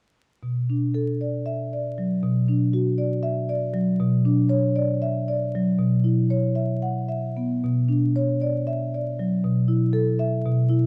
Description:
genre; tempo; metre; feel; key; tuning
classical, contemporary piece for solo marimba; 234 BPM (eighths); 7/8; rubato; B minor; A4 = 440 Hz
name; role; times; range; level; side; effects
marimba with soft mallets; solo; 0.4-10.9 s; B2 to F#5; -23 LUFS; equal; none
room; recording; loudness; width
moderate recital hall reverb, RT60 1.6 s; close, detailed microphones, vinyl crackle; -23 LUFS; mono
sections
0.4-7.6 A section; 7.6-10.9 B section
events
none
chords
0.4 Bm7; 2.2 D69/B; 4.0 Bmadd9; 5.8 C#m7/B; 7.6 Bmadd9; 9.4 B7sus4

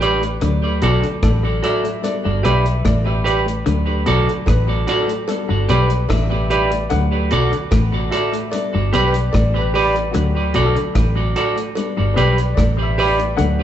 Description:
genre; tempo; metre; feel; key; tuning
roots reggae; 74 BPM; 4/4; straight; unclear; A4 = 440 Hz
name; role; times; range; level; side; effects
semi-hollow electric guitar; accompaniment; 0.0-13.2 s; F#4 to D5; -20 LUFS; right 2 dB; tape echo
dark upright piano; stabs; 0.0-13.6 s; F#3 to F#5; -25 LUFS; left 4 dB; none
vintage muted fingered electric bass; bass; 0.0-13.6 s; G1 to D2; -19 LUFS; equal; none
deep reggae drum kit; drums; 0.0-13.6 s; hi-hat, kick drum, rim click; -23 LUFS; equal; none
semi-hollow electric guitar; riff; 0.4-13.6 s; G2 to D3; -25 LUFS; left 4 dB; tape echo
cowbell; percussion; 0.4-13.6 s; none; -32 LUFS; right 3 dB; none
room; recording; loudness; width
wet large studio reverb, RT60 1.3 s; band playing live in one room, nothing above 7.9 kHz; -15 LUFS; side -10 dB against mid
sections
0.0-13.6 A section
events
upright piano solo 0.0-13.6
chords
0.4 D; 2.0 G; 3.7 D; 5.3 G; 6.9 D; 8.5 G; 10.1 D; 11.8 G

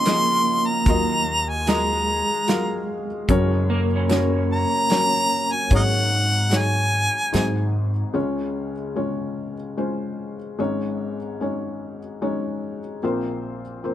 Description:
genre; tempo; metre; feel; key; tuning
acoustic folk-pop ballad; 74 BPM; 3/4; straight; Db major; A4 = 440 Hz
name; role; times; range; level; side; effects
clear harmonica; melody; 0.0-7.8 s; Bb4 to C6; -21 LUFS; equal; none
felt-muted upright piano; accompaniment; 0.0-13.9 s; Gb1 to F5; -25 LUFS; left 2 dB; none
electric guitar through a small old amp; arpeggios; 0.0-6.3 s; Ab3 to Eb4; -26 LUFS; right 2 dB; harmonic tremolo, slapback echo
natural country drum kit; drums; 0.1-7.5 s; hi-hat, kick drum, snare drum; -22 LUFS; equal; none
upright bass; bass; 0.9-8.0 s; Eb2 to Ab2; -23 LUFS; equal; none
room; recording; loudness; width
little or no reverb; close, detailed microphones; -20 LUFS; side -12 dB against mid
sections
0.0-8.2 A section; 8.2-13.9 B section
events
none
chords
0.0 Dbadd9; 0.9 Ebmadd9; 3.3 Gb; 5.7 Ab7sus4; 7.3 Ab7; 8.2 Db; 10.6 Absus4; 13.0 Bbsus2

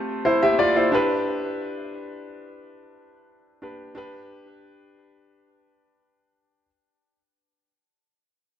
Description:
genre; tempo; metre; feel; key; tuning
pop; free time; none; none; G mixolydian; A4 = 443 Hz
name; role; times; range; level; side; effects
clear concert grand piano; solo; 0.0-6.7 s; A3 to E5; -22 LUFS; equal; tape echo
room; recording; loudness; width
moderate plate reverb, RT60 2.5 s; none; -19 LUFS; side -10 dB against mid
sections
0.0-6.7 A section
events
fade-out 0.0-6.7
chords
0.0 Fadd9; 0.9 G

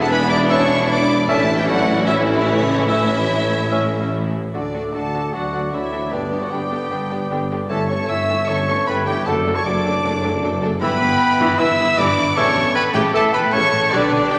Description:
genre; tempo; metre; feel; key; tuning
classical, dramatic, fast romantic movement for symphony orchestra; 153 BPM; 4/4; straight; unclear; A4 = 439 Hz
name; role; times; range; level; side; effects
rich symphonic violin section; melody; 0.0-14.4 s; C#5 to E6; -28 LUFS; equal; none
dark clarinet; second line; 0.0-14.1 s; C#4 to D5; -31 LUFS; equal; none
mellow hollow concert flute; second line; 0.0-14.4 s; A4 to C#6; -29 LUFS; equal; none
warm symphonic violin section; second line; 0.0-14.4 s; C#4 to A4; -28 LUFS; equal; none
warm symphonic viola section; accompaniment; 0.0-14.4 s; C#3 to D4; -29 LUFS; equal; none
dark French horn section; sustained chords; 0.0-14.4 s; C#3 to E4; -30 LUFS; equal; none
dark tuba; bass; 0.0-14.2 s; E1 to D2; -28 LUFS; equal; none
rich symphonic double bass section; bass; 0.0-14.2 s; E1 to D2; -30 LUFS; equal; none
warm symphonic cello section; bass; 0.0-14.2 s; D2 to B2; -32 LUFS; equal; none
warm cor anglais; second line; 0.5-14.1 s; C#5 to E5; -32 LUFS; equal; none
warm bassoon; accompaniment; 0.5-14.1 s; E3 to C#4; -33 LUFS; equal; none
warm trumpet; stabs; 4.5-14.4 s; D4 to E5; -23 LUFS; equal; none
room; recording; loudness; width
wet scoring stage reverb, RT60 1.8 s; none; -18 LUFS; mono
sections
0.0-4.5 A section; 4.5-14.4 B section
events
none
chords
0.0 E5; 1.3 A; 4.5 D; 6.1 G; 7.7 A7/G; 9.3 D/F#; 10.8 Em/G; 12.4 A

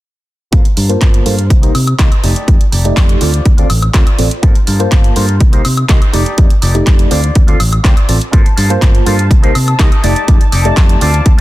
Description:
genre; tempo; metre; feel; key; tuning
filtered disco house; 123 BPM; 4/4; straight; G minor; A4 = 440 Hz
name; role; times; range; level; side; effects
barky tine electric piano; accompaniment; 0.5-11.4 s; A3 to A5; -18 LUFS; equal; phaser, sidechain pumping, low-pass filter
electric guitar with an envelope filter; riff; 0.5-11.4 s; Eb4 to F5; -23 LUFS; left 1 dB; vintage 12-bit sampler grit, sidechain pumping, low-pass filter
fingered electric bass; bass; 0.5-11.4 s; F1 to C3; -14 LUFS; equal; sidechain pumping, low-pass filter
electronic kick drum; drums; 0.5-11.4 s; none; -9 LUFS; equal; overdrive
house drum kit; drums; 0.5-11.4 s; handclaps, hi-hat, woodblock; -19 LUFS; right 1 dB; overdrive, sidechain pumping on hats, sidechain pumping on perc
tambourine; percussion; 0.5-11.4 s; none; barely audible; none; none
warm studio violin section; sustained chords; 8.3-11.4 s; A5; -22 LUFS; left 3 dB; sidechain pumping, low-pass filter
room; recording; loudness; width
little or no reverb; dense, heavily limited modern master; -8 LUFS; side -16 dB against mid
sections
0.5-11.4 A section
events
filter sweep 0.5-11.4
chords
0.5 Gm11; 1.5 Cm7; 2.2 F13; 3.2 Dm7; 4.4 Gm11; 5.4 Cm7; 6.1 F13; 7.1 Dm7; 8.3 Gm11; 9.3 Cm7; 10.0 F13

